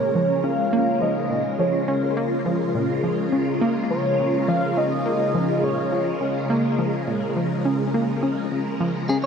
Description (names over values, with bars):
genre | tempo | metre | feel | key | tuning
ambient | 104 BPM | 4/4 | straight | unclear | A4 = 436 Hz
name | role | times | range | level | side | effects
pulse-width lead | melody | 0.0-6.5 s | C#5 to E#5 | -26 LUFS | equal | chorus, shimmer reverb, ping-pong delay
phased string machine | sustained chords | 0.0-9.3 s | C#3 to A#4 | -24 LUFS | equal | ensemble chorus, phaser, shimmer reverb
analog pluck | riff | 0.2-9.3 s | A#2 to C#4 | -24 LUFS | equal | chorus, shimmer reverb, ping-pong delay
clean electric guitar | arpeggios | 9.1-9.3 s | G#4 | -23 LUFS | left 1 dB | auto-pan
room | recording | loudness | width
wet huge ambient reverb, RT60 7.0 s | none | -20 LUFS | side -6 dB against mid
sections
0.0-9.3 A section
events
none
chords
0.0 A#m7